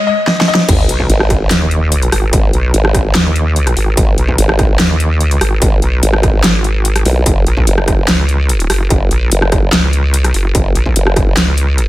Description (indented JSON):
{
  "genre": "heavy wobble dubstep",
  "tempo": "146 BPM",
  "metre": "4/4",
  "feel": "half-time",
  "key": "G# minor",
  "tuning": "A4 = 443 Hz",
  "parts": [
    { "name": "clear baby grand piano", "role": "melody", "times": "0.0-0.7 s", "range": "D#5", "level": "-17 LUFS", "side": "left 4 dB", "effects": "ping-pong delay" },
    { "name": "dubstep drum kit", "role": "drums", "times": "0.3-11.9 s", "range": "crash cymbal, handclaps, hi-hat, rim click, snare drum", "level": "-15 LUFS", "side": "equal", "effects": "small room ambience" },
    { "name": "formant-sweep wobble bass", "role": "bass", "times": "0.7-11.4 s", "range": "F#1 to B1", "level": "-13 LUFS", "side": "equal", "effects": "chorus, overdrive" },
    { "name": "electronic kick drum", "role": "drums", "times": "0.7-11.2 s", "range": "none", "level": "-15 LUFS", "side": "equal", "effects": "distortion, small room ambience" },
    { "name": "sub drop", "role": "sound effects", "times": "0.7-2.3 s", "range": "none", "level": "-20 LUFS", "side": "equal", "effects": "none" },
    { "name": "vowel-sweep wobble bass", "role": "bass", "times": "0.9-11.9 s", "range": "F#1 to D#2", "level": "-12 LUFS", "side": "equal", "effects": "chorus, overdrive" }
  ],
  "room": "digital ambience",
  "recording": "none",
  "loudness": "-10 LUFS",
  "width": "side -16 dB against mid",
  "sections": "0.7-11.9 A section",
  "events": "break 0.0-0.7; drum fill 0.3-0.7; drop 0.7-11.9; impact 0.7-2.3",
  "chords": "0.0 N.C.; 0.7 G#m; 7.3 F#",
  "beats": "0.27 | 0.69 1.10 1.51 1.92 | 2.33 2.74 3.15 3.56 | 3.97 4.38 4.79 5.21 | 5.62 6.03 6.44 6.85 | 7.26 7.67 8.08 8.49 | 8.90 9.31 9.73 10.14 | 10.55 10.96 11.37 11.78"
}